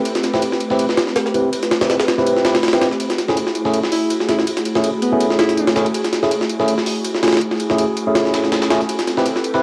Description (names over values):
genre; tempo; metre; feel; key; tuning
drum and bass, jungle; 163 BPM; 4/4; swing 54% on 16ths; F# minor; A4 = 440 Hz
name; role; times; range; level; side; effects
airy breathy pad; sustained chords; 0.0-9.6 s; A3 to B4; -25 LUFS; equal; chorus, cassette tape
breakbeat sampler-style drum kit; drums; 0.1-9.6 s; hi-hat, snare drum, tambourine; -32 LUFS; equal; high-pass filter on perc, high-pass filter on hats, high-pass filter on snare
jungle sampler-style drum kit; drums; 0.1-9.5 s; hi-hat, ride cymbal, snare drum; -22 LUFS; equal; high-pass filter on cymbals, high-pass filter on snare, high-pass filter on hats
overdriven tine electric piano; stabs; 0.3-9.6 s; A3 to B4; -22 LUFS; equal; low-pass filter, cassette tape, dub echo
mellow alto saxophone; melody; 3.9-5.8 s; B3 to E4; -26 LUFS; equal; dub echo
room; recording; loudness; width
moderate spring reverb, RT60 1.8 s; home recording on cassette; -18 LUFS; mono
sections
0.0-9.6 A section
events
none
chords
0.0 Am9; 3.0 F#m9; 8.9 Am9